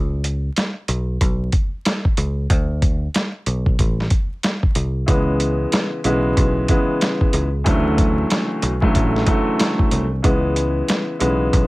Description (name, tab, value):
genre	hip hop, boom-bap hip-hop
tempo	93 BPM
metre	4/4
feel	swing 61% on 16ths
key	unclear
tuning	A4 = 441 Hz
part	picked electric bass	bass	0.0-11.7 s	A1 to D2	-21 LUFS	equal	none
part	dusty soul sampler-style drum kit	drums	0.2-11.7 s	hi-hat, kick drum, snare drum	-19 LUFS	equal	overdrive
part	warm upright piano	accompaniment	5.1-11.7 s	D2 to B3	-19 LUFS	equal	cassette tape, high-pass filter, low-pass filter, plate reverb
room	light reverb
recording	vinyl crackle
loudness	-17 LUFS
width	side -20 dB against mid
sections	0.0-11.7 A section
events	break 0.0-5.1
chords	0.0 Bsus2; 2.5 D5; 5.1 C#m7; 7.7 Dmaj7; 10.2 C#m7